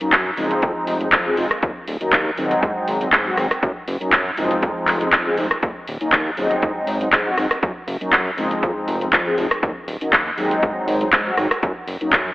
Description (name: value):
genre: filtered disco house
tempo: 120 BPM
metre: 4/4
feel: swing 54% on 16ths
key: Eb dorian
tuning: A4 = 441 Hz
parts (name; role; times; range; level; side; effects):
- mellow synth brass; accompaniment; 0.0-12.1 s; F3 to Ab4; -22 LUFS; equal; chorus, phaser, cassette tape, sidechain pumping
- fat analog bass; bass; 0.0-12.3 s; Eb1 to Ab2; -26 LUFS; equal; sidechain pumping
- house drum kit; drums; 0.0-12.2 s; handclaps, hi-hat, rim click; -19 LUFS; equal; sidechain pumping on hats, studio reverb
- electronic kick drum; drums; 0.1-12.2 s; none; -23 LUFS; equal; overdrive, studio reverb
room: wet lush hall reverb, RT60 1.9 s, digital ambience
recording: dreamy mix soaked in reverb, telephone sound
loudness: -17 LUFS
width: side -18 dB against mid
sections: 0.0-12.3 A section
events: none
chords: 0.0 Gb6; 0.6 Fm7; 1.6 Ebm; 2.6 Ab7; 3.6 Gb5; 4.6 Fm7; 5.6 Ebm; 6.6 Ab7; 7.6 Gb5; 8.6 Fm7; 9.6 Ebm; 10.6 Ab7; 11.6 Gb6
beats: 0.13 | 0.63 1.13 1.63 2.13 | 2.63 3.13 3.63 4.13 | 4.63 5.13 5.63 6.13 | 6.63 7.13 7.63 8.13 | 8.63 9.13 9.63 10.13 | 10.63 11.13 11.63 12.13